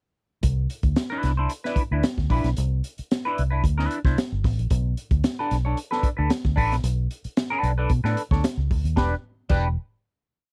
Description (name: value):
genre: funk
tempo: 113 BPM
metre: 4/4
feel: straight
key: unclear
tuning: A4 = 441 Hz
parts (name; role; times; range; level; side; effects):
- vintage muted fingered electric bass; bass; 0.4-9.8 s; E1 to B2; -26 LUFS; equal; none
- crunchy breakbeat drum kit; drums; 0.4-9.6 s; crash cymbal, hi-hat, kick drum, snare drum; -26 LUFS; equal; none
- clean electric guitar; accompaniment; 1.1-9.7 s; D4 to C#5; -28 LUFS; equal; phaser
room: little or no reverb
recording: dry, close 1970s-style studio recording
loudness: -24 LUFS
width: mono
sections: 0.4-9.0 bridge; 9.0-10.5 final chord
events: none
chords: 0.4 Cmaj9; 4.7 Bm7; 9.0 Em7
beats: | 0.44 0.97 1.50 2.04 | 2.57 3.10 3.63 4.17 | 4.70 5.24 5.77 6.30 | 6.84 7.37 7.90 8.44 | 8.97 9.50